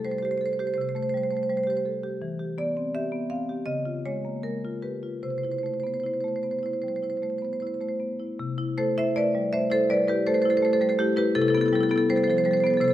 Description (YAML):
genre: classical, contemporary piece for solo marimba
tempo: 74-83 BPM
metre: 4/4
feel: rubato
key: C major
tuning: A4 = 438 Hz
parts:
  - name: marimba with medium hard mallets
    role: solo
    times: 0.0-12.9 s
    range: C3 to F5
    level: -23 LUFS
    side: equal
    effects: none
room: moderate recital hall reverb, RT60 1.6 s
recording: none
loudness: -24 LUFS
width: side -13 dB against mid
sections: 0.0-8.4 A section; 8.4-12.9 B section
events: none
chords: 0.0 Am7/C; 2.2 Em; 3.7 Db; 5.2 C6; 11.3 Am9/C